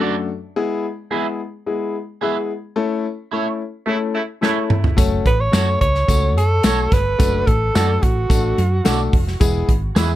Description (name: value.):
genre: uptempo 1960s-style soul.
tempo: 108 BPM.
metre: 4/4.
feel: straight.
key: A major.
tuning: A4 = 440 Hz.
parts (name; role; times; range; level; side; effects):
warm concert grand piano; accompaniment; 0.0-10.2 s; F#2 to A4; -23 LUFS; left 5 dB; none.
electric guitar at the edge of break-up; stabs; 0.0-10.1 s; E4 to E5; -24 LUFS; right 8 dB; phaser.
mellow horn section; second line; 3.9-5.0 s; C#3 to E4; -25 LUFS; right 2 dB; none.
natural country drum kit; drums; 4.4-10.1 s; hi-hat, kick drum, snare drum, toms; -18 LUFS; equal; none.
hollow-body short-scale fingered electric bass; bass; 5.0-10.2 s; E1 to F#2; -20 LUFS; right 1 dB; none.
tambourine; percussion; 5.0-10.1 s; none; -32 LUFS; left 4 dB; none.
breathy tenor saxophone; melody; 5.3-9.1 s; F#4 to C#5; -21 LUFS; right 2 dB; tape echo.
room: light reverb.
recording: dark, warm production.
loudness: -16 LUFS.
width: side -14 dB against mid.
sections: 0.0-10.2 A section.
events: band accent 2.8-5.0; drum fill 4.4-5.0.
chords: 0.0 D/F#; 0.6 E; 2.8 A; 5.0 F#m; 7.2 D/F#; 9.4 E.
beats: 0.00 | 0.56 1.11 1.67 2.22 | 2.77 3.33 3.88 4.43 | 4.98 5.54 6.09 6.64 | 7.20 7.75 8.30 8.85 | 9.41 9.96.